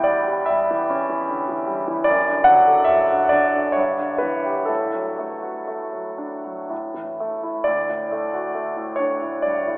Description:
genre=classical, romantic nocturne for solo piano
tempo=60-76 BPM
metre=3/4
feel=rubato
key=D major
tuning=A4 = 440 Hz
part: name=clear concert grand piano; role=solo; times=0.0-9.8 s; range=D2 to G5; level=-18 LUFS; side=equal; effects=none
room=wet cathedral reverb, RT60 5.5 s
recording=recorded in a church or concert hall, telephone sound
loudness=-18 LUFS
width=side -23 dB against mid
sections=0.0-9.8 A section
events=none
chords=0.0 C#dim/E; 2.1 D/F#; 3.8 Em7/G; 4.7 D/A; 6.7 A5; 7.7 D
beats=0.47 1.27 | 2.08 2.90 3.77 | 4.71 5.70 6.70 | 7.67 8.57 9.46

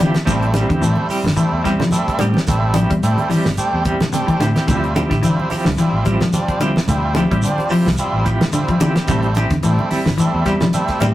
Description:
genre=afrobeat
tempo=109 BPM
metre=4/4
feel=swing 55% on 16ths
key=D minor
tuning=A4 = 440 Hz
part: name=clean electric guitar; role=arpeggios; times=0.0-11.1 s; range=C3 to G3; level=-19 LUFS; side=left 2 dB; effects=none
part: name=semi-hollow electric guitar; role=stabs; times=0.0-11.1 s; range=F3 to G4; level=-23 LUFS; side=right 2 dB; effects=tremolo
part: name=fingered electric bass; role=bass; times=0.0-11.1 s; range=G1 to D3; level=-20 LUFS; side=equal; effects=none
part: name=damped 70s drum kit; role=drums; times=0.0-11.1 s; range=hi-hat, kick drum, snare drum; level=-21 LUFS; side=equal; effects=none
part: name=shekere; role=percussion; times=0.0-11.1 s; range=none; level=-30 LUFS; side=equal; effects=none
part: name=combo organ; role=accompaniment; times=0.3-11.0 s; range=F3 to G4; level=-22 LUFS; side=right 1 dB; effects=none
part: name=congas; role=percussion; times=0.3-11.1 s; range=none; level=-24 LUFS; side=right 1 dB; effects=none
room=wet small room reverb, RT60 0.5 s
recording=rough rehearsal-room recording, tube saturation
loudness=-14 LUFS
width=side -14 dB against mid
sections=0.0-11.1 A section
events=none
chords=0.3 Am7; 4.7 Dm11; 9.1 Am7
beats=| 0.27 0.82 1.37 1.92 | 2.47 3.02 3.58 4.13 | 4.68 5.23 5.78 6.33 | 6.88 7.43 7.98 8.54 | 9.09 9.64 10.19 10.74

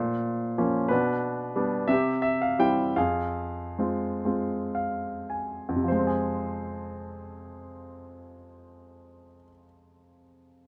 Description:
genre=classical, lyrical solo piano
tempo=33-62 BPM (dotted quarters)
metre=6/8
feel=rubato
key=F minor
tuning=A4 = 440 Hz
part: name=clear concert grand piano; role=solo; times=0.0-10.7 s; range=F2 to Ab5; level=-28 LUFS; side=equal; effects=none
room=light reverb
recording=none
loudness=-28 LUFS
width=mono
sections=0.0-5.9 A section; 5.9-10.7 B section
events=slowing down 0.9-5.9; grand piano fill 4.2-5.9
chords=0.0 Bbm; 0.9 G/B; 1.9 C; 3.0 Fm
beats=| 0.90 1.89 | 2.96 4.25 | 5.87 7.67 | 9.41

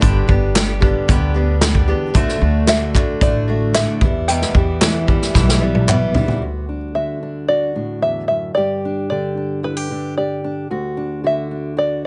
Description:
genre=indie folk with a building arrangement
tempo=112 BPM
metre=4/4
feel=straight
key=D major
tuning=A4 = 440 Hz
part: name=fingerpicked steel-string acoustic guitar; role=accompaniment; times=0.0-12.1 s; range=D2 to G4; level=-26 LUFS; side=equal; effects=plate reverb
part: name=picked acoustic archtop guitar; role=accompaniment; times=0.0-6.4 s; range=E2 to G4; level=-25 LUFS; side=equal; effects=plate reverb
part: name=upright bass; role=bass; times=0.0-6.2 s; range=G1 to E2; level=-21 LUFS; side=equal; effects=none
part: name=unplugged drum kit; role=drums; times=0.0-6.4 s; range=hi-hat, kick drum, snare drum, toms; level=-19 LUFS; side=equal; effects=none
part: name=group handclap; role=percussion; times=0.6-6.0 s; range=none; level=-24 LUFS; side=equal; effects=none
part: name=open-back banjo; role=melody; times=2.7-12.0 s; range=B4 to G5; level=-23 LUFS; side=equal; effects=plate reverb
room=light reverb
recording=nothing above 10.6 kHz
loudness=-18 LUFS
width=mono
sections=0.0-6.4 A section; 6.4-12.1 B section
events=drum fill 5.3-6.4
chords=0.0 G; 2.2 D; 4.0 Em; 6.4 D; 8.6 G; 10.7 D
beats=| 0.03 0.56 1.09 1.62 | 2.15 2.69 3.22 3.75 | 4.28 4.82 5.35 5.88 | 6.42 6.95 7.48 8.02 | 8.55 9.09 9.62 10.16 | 10.69 11.23 11.76

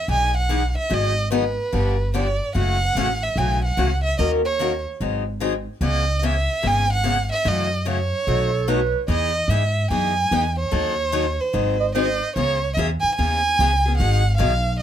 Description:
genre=acoustic string swing (jazz manouche)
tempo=147 BPM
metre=4/4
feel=swing 64% on 8ths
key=unclear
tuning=A4 = 436 Hz
part: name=warm violin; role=melody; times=0.0-14.8 s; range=B4 to G#5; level=-22 LUFS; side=right 3 dB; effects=none
part: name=picked steel-string acoustic guitar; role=accompaniment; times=0.1-14.5 s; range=B2 to A#4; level=-25 LUFS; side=left 5 dB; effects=none
part: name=upright bass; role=bass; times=0.1-14.8 s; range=F#1 to G#2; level=-22 LUFS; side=equal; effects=none
part: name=mellow clarinet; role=second line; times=8.3-9.0, 11.8-12.3 s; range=A4 to D#5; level=-24 LUFS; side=right 7 dB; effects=none
room=light reverb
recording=close, detailed microphones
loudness=-19 LUFS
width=side -10 dB against mid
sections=0.0-12.4 A section; 12.4-14.8 B section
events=none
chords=0.0 Emaj7; 0.9 G#m7; 1.7 G7; 2.5 F#m7; 4.2 D#m7; 5.0 G#7; 5.8 C#m7; 7.5 F#m7; 8.3 B7; 9.1 Emaj7; 10.7 D#m7b5; 11.5 G#7; 12.4 C#m7; 14.0 G#m7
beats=0.09 0.50 | 0.91 1.32 1.73 2.14 | 2.55 2.96 3.37 3.77 | 4.18 4.59 5.00 5.41 | 5.82 6.23 6.64 7.05 | 7.46 7.86 8.27 8.68 | 9.09 9.50 9.91 10.32 | 10.72 11.13 11.54 11.95 | 12.36 12.77 13.18 13.59 | 13.99 14.40 14.81

